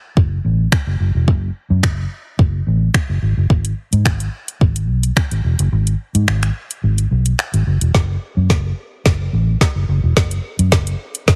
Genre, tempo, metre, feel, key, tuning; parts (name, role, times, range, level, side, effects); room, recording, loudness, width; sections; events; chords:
dance-pop; 108 BPM; 4/4; straight; F# minor; A4 = 441 Hz
vintage muted fingered electric bass; bass; 0.2-11.4 s; E1 to G#2; -18 LUFS; equal; sidechain pumping
smooth R&B drum kit; drums; 0.2-11.4 s; finger snaps, hi-hat, kick drum, snare drum; -18 LUFS; equal
little or no reverb; heavily compressed radio sound, multiband compression, lossy compression artefacts; -17 LUFS; mono
0.0-7.9 A section; 7.9-11.4 B section
kick muted 5.7-7.9; build-up 7.9-11.4; drum fill 7.9-11.4